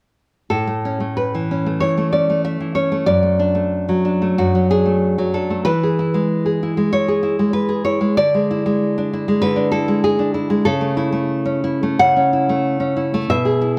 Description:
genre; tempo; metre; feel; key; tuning
romantic piece for solo classical guitar; 94 BPM; 4/4; uneven beats, rubato; A major; A4 = 439 Hz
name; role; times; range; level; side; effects
nylon-string guitar; solo; 0.5-13.8 s; F#2 to F#5; -18 LUFS; equal; none
room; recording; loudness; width
moderate recital hall reverb, RT60 1.5 s; none; -18 LUFS; mono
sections
0.5-13.8 A section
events
none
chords
0.5 A; 3.1 D/F#; 5.7 E; 8.2 E7/D; 10.7 A/C#

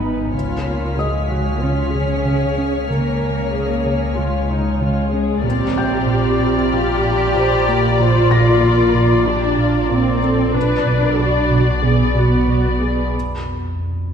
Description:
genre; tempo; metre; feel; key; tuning
cinematic, suspense film score; 94 BPM; 4/4; straight; unclear; A4 = 440 Hz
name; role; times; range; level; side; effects
muted studio violin section; melody; 0.0-13.1 s; B4 to D5; -24 LUFS; left 5 dB; none
muted studio viola section; accompaniment; 0.0-13.1 s; A#3 to B#4; -24 LUFS; equal; none
glass harmonica; sustained chords; 0.0-13.1 s; D#4 to D6; -27 LUFS; equal; none
round analog bass; riff; 0.0-13.0 s; A#2 to C#4; -22 LUFS; right 1 dB; none
muted studio cello section; bass; 0.0-13.1 s; G#3 to G4; -20 LUFS; right 1 dB; none
muted studio double bass section; bass; 0.0-13.1 s; G#1 to C#2; -25 LUFS; right 2 dB; none
deep rumbling drone; drone; 0.0-14.1 s; G#1 to E#2; -24 LUFS; left 1 dB; built-in reverb
felt-muted upright piano; texture; 0.0-10.6 s; D#5 to A#6; -31 LUFS; left 2 dB; none
muted studio violin section; texture; 0.3-10.2 s; A#5 to B6; -30 LUFS; left 6 dB; none
room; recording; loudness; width
wet concert hall reverb, RT60 2.3 s; minimal, uncompressed stereo recording; -15 LUFS; side -7 dB against mid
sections
0.0-14.1 A section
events
break 13.1-14.1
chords
0.3 C#; 5.4 A#add9; 10.6 Bm; 13.1 N.C.

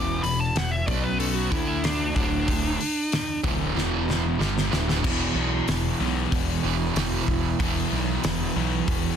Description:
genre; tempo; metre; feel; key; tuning
quiet-loud alternative rock; 94 BPM; 4/4; straight; unclear; A4 = 443 Hz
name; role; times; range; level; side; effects
bluesy overdriven lead guitar; melody; 0.0-3.4 s; D4 to D6; -28 LUFS; equal; distortion, plate reverb
picked steel-string acoustic guitar; arpeggios; 0.0-5.0 s; D2 to E3; -36 LUFS; left 10 dB; plate reverb
overdriven electric guitar; riff; 0.0-9.2 s; D2 to D4; -30 LUFS; left 12 dB; none
overdriven semi-hollow guitar; riff; 0.0-9.2 s; D2 to D4; -28 LUFS; right 13 dB; harmonic tremolo
fuzz picked electric bass; bass; 0.0-9.1 s; D1 to D2; -28 LUFS; equal; overdrive
loose indie drum kit; drums; 0.2-9.0 s; crash cymbal, hi-hat, kick drum, snare drum; -28 LUFS; left 1 dB; none
room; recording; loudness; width
light reverb; dense, heavily limited modern master; -22 LUFS; side -8 dB against mid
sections
0.0-5.0 A section; 5.0-9.2 B section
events
lead electric guitar solo 0.0-5.0; drum fill 3.8-5.0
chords
0.0 E5; 0.9 B5; 1.5 D5; 3.4 E5

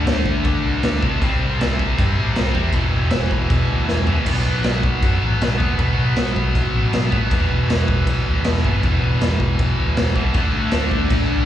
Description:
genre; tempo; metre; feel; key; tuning
punk rock; 158 BPM; 4/4; straight; E minor; A4 = 440 Hz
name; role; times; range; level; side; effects
tight distorted guitar; riff; 0.0-11.5 s; E2 to D4; -22 LUFS; equal; distortion, slapback echo
tight distorted guitar; riff; 0.0-4.3, 10.3-11.5 s; E2 to D4; -27 LUFS; equal; distortion, slapback echo
overdriven picked electric bass; bass; 0.0-11.4 s; E1 to C3; -21 LUFS; equal; none
raw garage drum kit; drums; 0.1-11.2 s; crash cymbal, kick drum, snare drum, toms; -20 LUFS; equal; none
room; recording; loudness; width
small room ambience; live gig heard through the venue's PA, recital hall reverb, studio ambience; -16 LUFS; side -11 dB against mid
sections
0.0-4.3 A section; 4.3-11.5 A section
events
drum fill 3.9-4.3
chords
0.0 D5; 1.2 C5; 2.7 E5; 4.3 B5; 7.3 E5; 10.3 D5

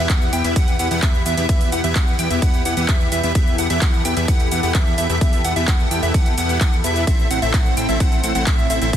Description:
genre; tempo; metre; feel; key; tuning
EDM, festival progressive house; 129 BPM; 4/4; straight; E minor; A4 = 443 Hz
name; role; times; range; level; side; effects
lush unison pad; sustained chords; 0.0-9.0 s; E3 to B4; -28 LUFS; equal; chorus, phaser, sidechain pumping
plucky unison lead; arpeggios; 0.0-9.0 s; E5 to G5; -24 LUFS; equal; sidechain pumping, tape echo
dense compressed supersaw; riff; 0.0-9.0 s; B3 to G5; -24 LUFS; equal; sidechain pumping, tape echo
fat analog bass; bass; 0.0-9.0 s; A1 to E2; -24 LUFS; equal; sidechain pumping
big-room dance drum kit; drums; 0.1-9.0 s; handclaps, hi-hat, ride cymbal, shaker; -26 LUFS; equal; overdrive
electronic kick drum; drums; 0.1-9.0 s; none; -17 LUFS; equal; overdrive
room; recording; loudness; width
little or no reverb; dense, heavily limited modern master; -15 LUFS; side -10 dB against mid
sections
0.0-9.0 A section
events
none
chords
0.0 Em; 7.1 Am

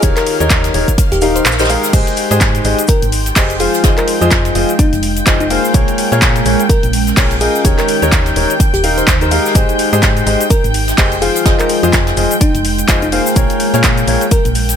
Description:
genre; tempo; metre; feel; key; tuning
piano house; 126 BPM; 4/4; swing 58% on 16ths; F minor; A4 = 439 Hz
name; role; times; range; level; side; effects
bell-like FM electric piano; melody; 0.0-14.5 s; Eb4 to C5; -21 LUFS; left 2 dB; chorus, ping-pong delay
dark studio string section; sustained chords; 0.0-14.8 s; F5 to G6; -22 LUFS; equal; vintage 12-bit sampler grit, sidechain pumping
clear concert grand piano; riff; 0.0-14.2 s; Eb3 to F5; -17 LUFS; left 2 dB; sidechain pumping, ping-pong delay
solid FM bass; bass; 0.0-14.7 s; Eb1 to Bb2; -18 LUFS; equal; sidechain pumping
electronic kick drum; drums; 0.0-14.4 s; none; -14 LUFS; equal; studio reverb
house drum kit; drums; 0.0-14.8 s; crash cymbal, handclaps, hi-hat, shaker; -18 LUFS; left 1 dB; studio reverb
soft brush drum kit; drums; 0.0-14.8 s; hi-hat, shaker, snare drum; -23 LUFS; right 1 dB; high-pass filter on hats, studio reverb, high-pass filter on snare, high-pass filter on perc, high-pass filter on room
deep dark ambient pad; texture; 0.0-14.8 s; Ab3 to C6; -21 LUFS; right 2 dB; chorus, built-in reverb, sidechain pumping
room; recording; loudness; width
small room ambience; none; -10 LUFS; side -8 dB against mid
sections
0.0-14.8 A section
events
kick drops out 1.5-1.9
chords
0.0 Eb7; 1.9 Fm7; 5.7 Bbm7; 7.6 Eb7; 9.6 Fm7; 13.4 Bbm7

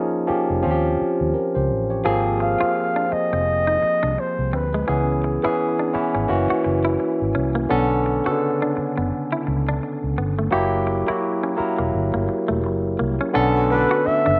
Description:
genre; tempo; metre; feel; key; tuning
R&B, neo-soul; 85 BPM; 4/4; swing 58% on 16ths; unclear; A4 = 440 Hz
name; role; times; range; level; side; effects
barky tine electric piano; accompaniment; 0.0-14.4 s; C#3 to C#5; -24 LUFS; equal; overdrive, phaser
vintage muted fingered electric bass; bass; 0.3-14.4 s; E1 to D#2; -27 LUFS; equal; none
semi-hollow electric guitar; second line; 2.1-14.4 s; G#3 to G#4; -31 LUFS; equal; spring reverb
breathy flugelhorn; melody; 2.4-5.2, 13.7-14.4 s; B4 to E#5; -23 LUFS; equal; slapback echo
mellow horn section; stabs; 13.5-14.3 s; A2 to F#4; -33 LUFS; equal; none
room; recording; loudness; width
little or no reverb; recorded outdoors, with no room sound, nothing above 7.5 kHz; -21 LUFS; mono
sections
0.0-13.3 A section; 13.3-14.4 B section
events
none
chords
0.0 A#m7; 0.6 D#13; 2.0 G#69; 4.9 C#m7; 6.3 F#7; 7.7 Bm9; 10.5 F#7b9; 13.3 Bm9

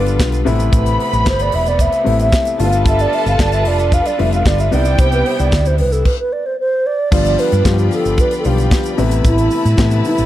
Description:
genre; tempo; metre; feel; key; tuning
disco; 113 BPM; 4/4; straight; unclear; A4 = 440 Hz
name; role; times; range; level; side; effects
wooden-headed alto flute; melody; 0.0-10.3 s; E4 to F5; -18 LUFS; right 2 dB; slapback echo
dark studio violin section; second line; 0.0-5.8 s; G4 to D6; -23 LUFS; right 1 dB; none
warm baby grand piano; accompaniment; 0.0-10.3 s; C3 to F4; -21 LUFS; left 5 dB; none
bright studio string section; sustained chords; 0.0-10.3 s; C3 to B5; -25 LUFS; right 1 dB; none
hollow-body short-scale fingered electric bass; bass; 0.0-10.3 s; E1 to A2; -16 LUFS; equal; none
tight funk drum kit; drums; 0.1-10.3 s; crash cymbal, hi-hat, kick drum, snare drum; -17 LUFS; equal; none
tube shaker; percussion; 0.1-10.3 s; none; -36 LUFS; right 7 dB; none
room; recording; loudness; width
studio ambience; dark, warm production; -12 LUFS; side -13 dB against mid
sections
0.0-7.1 A section; 7.1-10.3 B section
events
alto flute solo 0.0-7.1; stop 6.1-7.1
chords
0.5 Amadd9; 2.6 G7; 4.7 Cmaj7; 7.1 G7; 9.0 Amadd9

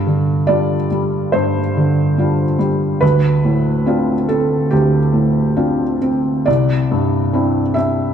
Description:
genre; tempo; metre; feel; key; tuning
neoclassical minimalist piano; 71 BPM; 4/4; rubato; unclear; A4 = 441 Hz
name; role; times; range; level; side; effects
felt-muted upright piano; solo; 0.0-8.1 s; C2 to E5; -14 LUFS; equal; slapback echo
room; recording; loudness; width
moderate plate reverb, RT60 2.6 s; heard from further back in the room; -14 LUFS; side -8 dB against mid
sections
0.0-8.1 A section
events
none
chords
0.0 G7sus4; 3.0 Dm7; 6.5 Cadd9

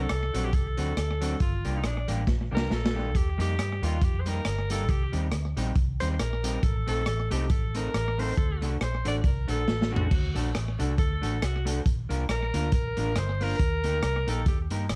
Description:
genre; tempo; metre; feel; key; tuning
ska; 138 BPM; 4/4; swing 57% on 8ths; unclear; A4 = 440 Hz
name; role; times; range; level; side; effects
bright alto saxophone; melody; 0.0-14.6 s; D4 to D5; -35 LUFS; equal; slapback echo
electric guitar through a small old amp; accompaniment; 0.0-14.8 s; F#3 to Bb4; -37 LUFS; equal; none
vintage muted fingered electric bass; bass; 0.0-15.0 s; G1 to G2; -31 LUFS; equal; none
crunchy breakbeat drum kit; drums; 0.1-15.0 s; crash cymbal, hi-hat, kick drum, rim click, snare drum, toms; -31 LUFS; equal; slapback echo
room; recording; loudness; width
light reverb; vinyl crackle; -27 LUFS; mono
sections
0.0-15.0 A section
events
alto saxophone solo 0.0-15.0; drum fill 2.3-3.1, 9.7-10.1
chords
0.0 D7; 1.4 Gm; 3.1 Eb; 4.9 Cm; 6.6 Adim; 8.4 D; 11.9 Bb; 13.6 Eb

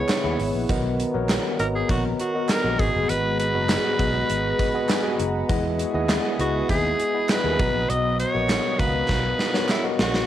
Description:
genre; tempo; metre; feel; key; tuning
1980s-style pop; 100 BPM; 4/4; straight; B major; A4 = 440 Hz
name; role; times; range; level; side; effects
raspy alto saxophone; melody; 0.0-10.3 s; E4 to D#5; -26 LUFS; equal; cassette tape, tape echo
tine electric piano; accompaniment; 0.0-10.3 s; G#2 to A#5; -26 LUFS; left 1 dB; medium stereo tremolo
lush unison pad; sustained chords; 0.0-10.3 s; C#3 to A#5; -32 LUFS; equal; chorus
gated 80s drum kit; drums; 0.1-10.3 s; hi-hat, kick drum, snare drum, tambourine; -25 LUFS; equal; cassette tape
group handclap; percussion; 0.1-9.8 s; none; -35 LUFS; right 8 dB; none
fretless electric bass; bass; 0.2-10.2 s; F#1 to E2; -28 LUFS; equal; none
room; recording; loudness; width
moderate studio reverb, RT60 0.5 s; home recording on cassette; -20 LUFS; side -12 dB against mid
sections
0.0-10.3 A section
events
tine electric piano fill 4.3-5.5; drum fill 9.1-10.3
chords
0.0 C#m7; 0.7 Bmaj7; 2.8 G#m7; 5.5 Emaj7; 7.6 Bmaj7

